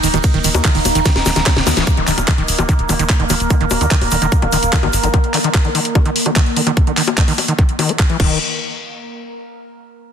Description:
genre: psychedelic trance.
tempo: 147 BPM.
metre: 4/4.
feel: straight.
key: unclear.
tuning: A4 = 441 Hz.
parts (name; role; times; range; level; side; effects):
overtone-sweeping drone; sustained chords; 0.0-8.2 s; Bb3 to Bb4; -22 LUFS; right 1 dB; chorus, built-in reverb, vintage 12-bit sampler grit, sidechain pumping.
overdriven acid bass; riff; 0.0-8.4 s; Db3 to Fb4; -21 LUFS; moving between left 9 dB and right 9 dB; distortion, auto-pan, sidechain pumping, dub echo.
tight sequencer bass; bass; 0.0-5.1, 8.2-8.4 s; Eb1 to Eb2; -20 LUFS; equal; none.
garage drum kit; drums; 0.0-8.3 s; bongos, crash cymbal, handclaps, hi-hat, ride cymbal, snare drum; -19 LUFS; left 2 dB; soft clipping on snare.
egg shaker; percussion; 0.0-5.1 s; none; -27 LUFS; left 4 dB; none.
electronic kick drum; drums; 0.2-8.3 s; none; -14 LUFS; equal; none.
room: light reverb.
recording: dense, heavily limited modern master.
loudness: -13 LUFS.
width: side -8 dB against mid.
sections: 0.0-1.9 A section; 1.9-8.4 B section; 8.4-10.0 C section.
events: drop 0.0-1.9; drum fill 1.1-1.9; band accent 1.8; filter sweep on acid bass 1.9-8.4.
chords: 0.0 Eb5; 8.2 N.C..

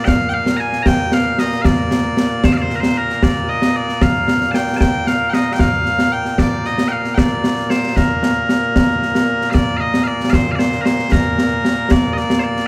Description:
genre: scottish traditional, Scottish pipe music.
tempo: 76 BPM (dotted quarters).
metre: 6/8.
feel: straight.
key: Bb major.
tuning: A4 = 440 Hz.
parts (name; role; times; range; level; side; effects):
loud bright bagpipes; melody; 0.0-12.7 s; Bb2 to Bb5; -20 LUFS; equal; none.
concert snare drum and concert bass drum; drums; 0.1-12.6 s; none; -19 LUFS; equal; none.
room: moderate plate reverb, RT60 2.0 s.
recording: heard from further back in the room.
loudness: -17 LUFS.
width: mono.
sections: 0.0-9.5 A section; 9.5-12.7 A section.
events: none.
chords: none.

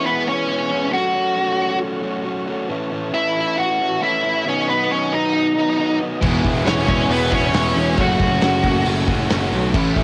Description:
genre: quiet-loud alternative rock.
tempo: 136 BPM.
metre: 4/4.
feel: straight.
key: unclear.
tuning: A4 = 439 Hz.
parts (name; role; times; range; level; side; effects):
high-gain lead guitar; melody; 0.0-8.8 s; B3 to F#5; -22 LUFS; equal; distortion, cassette tape.
mellow tonewheel organ; sustained chords; 0.0-10.0 s; A4 to D#6; -33 LUFS; equal; slow rotary speaker, cassette tape.
overdriven electric guitar; riff; 0.0-10.0 s; A2 to F#4; -27 LUFS; equal; cassette tape.
crunchy overdriven guitar; riff; 6.2-10.0 s; A2 to G#4; -28 LUFS; equal; cassette tape.
sludgy distorted guitar; riff; 6.2-10.0 s; A2 to F#4; -27 LUFS; equal; none.
fuzz picked electric bass; bass; 6.2-10.0 s; E1 to B1; -23 LUFS; equal; overdrive.
loose indie drum kit; drums; 6.2-10.0 s; crash cymbal, hi-hat, kick drum, snare drum; -24 LUFS; equal; cassette tape.
room: light reverb.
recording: home recording on cassette.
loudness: -19 LUFS.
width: mono.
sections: 0.0-10.0 A section.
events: none.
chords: 0.0 E6; 0.9 F#m; 2.7 Aadd9; 4.5 B; 6.2 E6; 8.0 F#m.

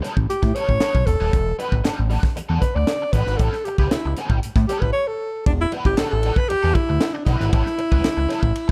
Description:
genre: funk.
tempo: 116 BPM.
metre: 4/4.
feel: straight.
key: E dorian.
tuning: A4 = 441 Hz.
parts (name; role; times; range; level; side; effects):
overdriven electric guitar; accompaniment; 0.0-8.7 s; G3 to B4; -33 LUFS; equal; wah.
fat analog bass; bass; 0.0-8.7 s; D#1 to A2; -24 LUFS; equal; none.
tight funk drum kit; drums; 0.0-8.7 s; hi-hat, kick drum, ride cymbal, snare drum; -23 LUFS; equal; none.
breathy alto saxophone; melody; 0.3-8.7 s; D4 to D5; -25 LUFS; equal; none.
group handclap; percussion; 0.8-8.2 s; none; -43 LUFS; equal; none.
room: light reverb.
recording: dark, warm production.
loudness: -20 LUFS.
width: mono.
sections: 0.0-5.5 A section; 5.5-8.7 B section.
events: alto saxophone solo 0.0-5.5; break 4.9-5.5.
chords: 0.0 A9; 1.3 Em11; 3.4 A9; 5.5 Em11; 7.5 A9.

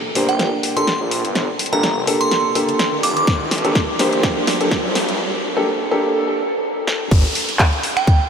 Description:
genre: bass house.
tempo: 125 BPM.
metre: 4/4.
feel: swing 55% on 16ths.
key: G minor.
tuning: A4 = 440 Hz.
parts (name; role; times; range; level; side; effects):
riser and downlifter; sound effects; 0.0-8.3 s; none; -29 LUFS; equal; none.
warm concert grand piano; stabs; 0.2-6.4 s; Bb3 to C5; -20 LUFS; equal; sidechain pumping, tape echo.
phased detuned saw bass; bass; 0.2-7.2 s; F1 to Bb1; -24 LUFS; equal; phaser, overdrive, sidechain pumping, high-pass filter.
house drum kit; drums; 0.2-8.2 s; crash cymbal, finger snaps, handclaps, hi-hat, snare drum; -22 LUFS; equal; high-pass filter on hats, small room reverb, high-pass filter on snare, high-pass filter on toms, high-pass filter on cymbals.
glassy synth bell; melody; 0.3-3.2, 8.0-8.2 s; G5 to D6; -23 LUFS; right 2 dB; chorus, phaser, tape echo.
electronic kick drum; drums; 3.3-8.2 s; none; -16 LUFS; equal; small room reverb.
room: wet huge ambient reverb, RT60 7.6 s.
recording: dreamy mix soaked in reverb, high-pass filter.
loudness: -16 LUFS.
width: side -7 dB against mid.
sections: 0.0-7.1 A section; 7.1-8.3 B section.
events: build-up 0.0-7.1; drum fill 0.0-5.2, 6.9; riser 0.0-5.2; break 5.2-7.1; drop 7.1-8.3.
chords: 0.0 Gmadd9; 7.1 N.C..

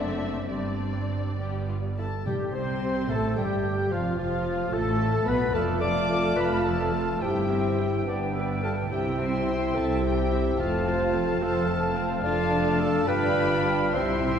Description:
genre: quick classical-period movement for symphony orchestra.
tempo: 66-74 BPM (dotted quarters).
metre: 6/8.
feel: rubato.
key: C major.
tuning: A4 = 440 Hz.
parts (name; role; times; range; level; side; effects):
muted studio violin section; melody; 0.0-14.4 s; F4 to A5; -38 LUFS; left 5 dB; none.
muted studio violin section; second line; 0.0-14.4 s; D4 to D6; -36 LUFS; left 2 dB; none.
muted studio viola section; accompaniment; 0.0-14.4 s; F3 to C5; -33 LUFS; right 1 dB; none.
muted studio cello section; bass; 0.0-14.4 s; F2 to C3; -32 LUFS; right 2 dB; none.
muted studio double bass section; bass; 0.0-14.4 s; F1 to C2; -32 LUFS; right 3 dB; none.
warm clarinet; second line; 2.0-14.4 s; F4 to D5; -31 LUFS; left 2 dB; none.
silver concert flute; second line; 2.3-14.4 s; F4 to A5; -34 LUFS; left 1 dB; none.
warm oboe; second line; 2.3-14.4 s; F4 to F5; -35 LUFS; equal; none.
mellow bassoon; accompaniment; 2.3-14.4 s; F3 to D4; -32 LUFS; equal; none.
mellow French horn section; sustained chords; 2.3-14.4 s; F3 to F4; -31 LUFS; left 1 dB; none.
timpani; percussion; 2.3-3.1, 13.9-14.4 s; C3; -37 LUFS; equal; none.
room: wet concert hall reverb, RT60 2.2 s.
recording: heard from further back in the room.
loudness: -23 LUFS.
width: side -8 dB against mid.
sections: 0.0-2.3 A section; 2.3-14.4 B section.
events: timpani fill 13.9-14.4.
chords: 0.5 Gsus4; 1.4 G; 2.3 C5; 3.9 F; 5.5 Dm/F; 7.2 C/G; 8.1 G; 8.9 C; 10.6 F; 12.2 Dm/F; 13.1 G7.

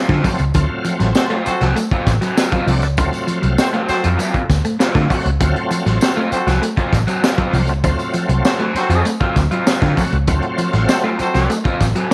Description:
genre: funk.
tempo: 99 BPM.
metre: 4/4.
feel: straight.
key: D mixolydian.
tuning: A4 = 441 Hz.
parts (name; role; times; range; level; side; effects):
raw garage guitar; accompaniment; 0.0-12.1 s; F#3 to F#4; -25 LUFS; equal; overdrive, phaser.
clean electric guitar; riff; 0.1-12.1 s; E#3 to A3; -26 LUFS; equal; none.
vintage muted picked electric bass; bass; 0.1-11.9 s; A1 to D3; -20 LUFS; equal; none.
crunchy breakbeat drum kit; drums; 0.1-12.1 s; hi-hat, kick drum, snare drum; -22 LUFS; equal; none.
bright tonewheel organ; stabs; 0.2-11.1 s; E#3 to F#4; -25 LUFS; equal; overdrive, chorus vibrato, slow rotary speaker.
tambourine; percussion; 0.2-12.1 s; none; -36 LUFS; equal; none.
clear horn section; second line; 1.2-11.6 s; C4 to C5; -25 LUFS; equal; none.
room: light reverb, small room ambience.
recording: none.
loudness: -17 LUFS.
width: mono.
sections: 0.0-12.1 A section.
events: none.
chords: 0.0 D7#9.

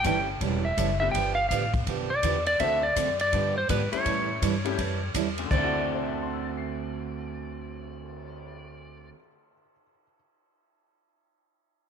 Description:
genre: country, western swing.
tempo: 165 BPM.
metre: 4/4.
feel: swing 64% on 8ths.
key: D mixolydian.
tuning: A4 = 440 Hz.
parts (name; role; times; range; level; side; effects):
clean lap steel guitar; melody; 0.0-9.1 s; B4 to G5; -27 LUFS; equal; slapback echo.
bright upright piano; accompaniment; 0.0-10.2 s; D2 to C7; -34 LUFS; left 14 dB; none.
picked steel-string acoustic guitar; accompaniment; 0.0-9.2 s; D3 to A4; -32 LUFS; right 10 dB; none.
upright bass; bass; 0.0-9.1 s; E1 to A2; -33 LUFS; left 2 dB; none.
swinging big-band drum kit; drums; 0.0-8.3 s; crash cymbal, cymbal swell, hi-hat, kick drum, ride cymbal; -33 LUFS; left 1 dB; none.
room: light reverb, small room ambience.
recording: 1960s-style stereo with parts hard left and right.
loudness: -24 LUFS.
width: side -7 dB against mid.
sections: 0.0-5.5 A section; 5.5-8.4 B section.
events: none.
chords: 0.0 A7; 1.1 G7; 2.6 D7; 3.3 G7; 4.1 A7; 5.5 D7.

